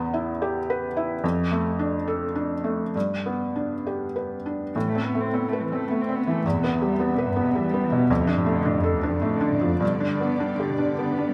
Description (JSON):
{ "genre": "neoclassical piano and strings", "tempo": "98-110 BPM", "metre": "3/4", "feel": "rubato", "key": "A minor", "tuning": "A4 = 441 Hz", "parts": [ { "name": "felt-muted upright piano", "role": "accompaniment", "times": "0.0-11.3 s", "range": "E2 to B4", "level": "-26 LUFS", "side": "equal", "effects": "none" }, { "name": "warm cello", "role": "second line", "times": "4.7-11.3 s", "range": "D2 to C4", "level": "-31 LUFS", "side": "equal", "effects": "none" }, { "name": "ethereal airy pad", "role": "sustained chords", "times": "5.6-11.3 s", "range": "B3 to E5", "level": "-35 LUFS", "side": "equal", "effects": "ensemble chorus, built-in reverb" } ], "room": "moderate recital hall reverb, RT60 1.4 s", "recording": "none", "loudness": "-25 LUFS", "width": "mono", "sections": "0.0-4.8 A section; 4.8-11.3 A section", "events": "none", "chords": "0.0 Em; 1.2 Dm/F; 2.9 G; 4.8 Amadd9; 6.4 Em; 8.1 Dm; 9.8 G" }